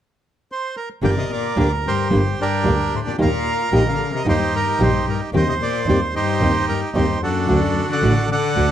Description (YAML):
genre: tango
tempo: 111 BPM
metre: 4/4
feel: rubato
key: G minor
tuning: A4 = 440 Hz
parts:
  - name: bandoneon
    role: melody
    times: 0.5-8.7 s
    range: D4 to G5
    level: -21 LUFS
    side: right 3 dB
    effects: none
  - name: warm cello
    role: second line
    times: 1.0-8.7 s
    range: F#2 to Eb3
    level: -24 LUFS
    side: left 7 dB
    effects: none
  - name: nylon-string guitar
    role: accompaniment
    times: 1.0-8.7 s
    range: D3 to G4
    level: -22 LUFS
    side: equal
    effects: none
  - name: dark double bass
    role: bass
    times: 1.0-8.7 s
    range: G1 to Eb2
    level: -22 LUFS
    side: right 2 dB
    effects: none
room: light reverb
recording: dark, warm production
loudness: -17 LUFS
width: side -10 dB against mid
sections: 0.0-1.0 A section; 1.0-8.7 B section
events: none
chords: 0.0 N.C.; 1.0 Gm; 3.2 Eb; 5.3 Cm/Eb; 7.5 D